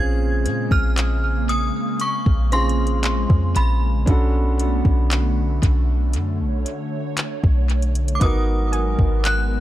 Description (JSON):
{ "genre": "contemporary R&B", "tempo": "58 BPM", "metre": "4/4", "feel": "straight", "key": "unclear", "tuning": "A4 = 440 Hz", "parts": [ { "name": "synth chime", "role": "melody", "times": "0.0-9.6 s", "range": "B5 to Ab6", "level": "-26 LUFS", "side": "equal", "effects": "ensemble chorus, tape echo" }, { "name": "clear grand piano", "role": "accompaniment", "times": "0.0-9.6 s", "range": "Cb4 to Bb4", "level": "-27 LUFS", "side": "right 2 dB", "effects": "tape echo" }, { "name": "hollow soft pad", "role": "sustained chords", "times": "0.0-9.6 s", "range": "Db3 to C#5", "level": "-28 LUFS", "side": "equal", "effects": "ensemble chorus" }, { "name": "clean 808-style bass", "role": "bass", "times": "0.0-9.6 s", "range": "Ab1 to Bb2", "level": "-20 LUFS", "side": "equal", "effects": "none" }, { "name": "soft round pluck", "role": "texture", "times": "0.0-9.6 s", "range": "Ab5 to Bb6", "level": "-38 LUFS", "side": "left 1 dB", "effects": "none" }, { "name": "smooth R&B drum kit", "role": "drums", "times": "0.5-9.5 s", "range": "handclaps, hi-hat, kick drum", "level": "-20 LUFS", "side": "equal", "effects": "tape echo" } ], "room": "digital ambience", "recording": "echo-heavy mix", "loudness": "-17 LUFS", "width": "side -14 dB against mid", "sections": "0.0-9.6 A section", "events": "none", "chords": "0.0 Bbm9; 4.1 Bm9; 8.2 Abm9" }